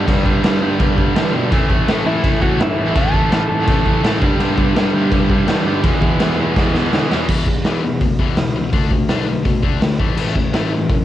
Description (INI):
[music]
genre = punk rock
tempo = 166 BPM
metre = 4/4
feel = straight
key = A mixolydian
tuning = A4 = 439 Hz
[part]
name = biting overdriven guitar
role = riff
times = 0.0-7.3 s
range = E2 to A3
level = -21 LUFS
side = right 9 dB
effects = cassette tape
[part]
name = cranked stack guitar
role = riff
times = 0.0-7.3 s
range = G2 to E4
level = -26 LUFS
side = left 1 dB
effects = none
[part]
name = tight distorted guitar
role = riff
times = 0.0-11.0 s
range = E2 to D4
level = -22 LUFS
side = left 9 dB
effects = distortion, cassette tape
[part]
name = overdriven tine electric piano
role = bass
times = 0.0-11.0 s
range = A1 to E3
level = -21 LUFS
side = equal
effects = none
[part]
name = raw garage drum kit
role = drums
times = 0.1-11.0 s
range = crash cymbal, hi-hat, kick drum, snare drum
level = -17 LUFS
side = equal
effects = cassette tape
[part]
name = lightly driven lead guitar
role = melody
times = 2.1-4.2 s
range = E4 to A5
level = -21 LUFS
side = equal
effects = cassette tape
[sound]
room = little or no reverb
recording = home recording on cassette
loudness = -14 LUFS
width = side -12 dB against mid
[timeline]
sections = 0.0-7.3 A section; 7.3-11.0 B section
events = drum fill 6.6-7.3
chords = 0.0 G; 1.5 A; 4.2 G; 5.8 E; 7.3 E5; 8.7 D5; 10.0 A5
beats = | 0.08 0.44 0.80 1.16 | 1.51 1.88 2.23 2.59 | 2.95 3.31 3.67 4.03 | 4.39 4.75 5.11 5.47 | 5.83 6.20 6.56 6.92 | 7.28 7.64 8.00 8.36 | 8.72 9.09 9.45 9.81 | 10.17 10.53 10.89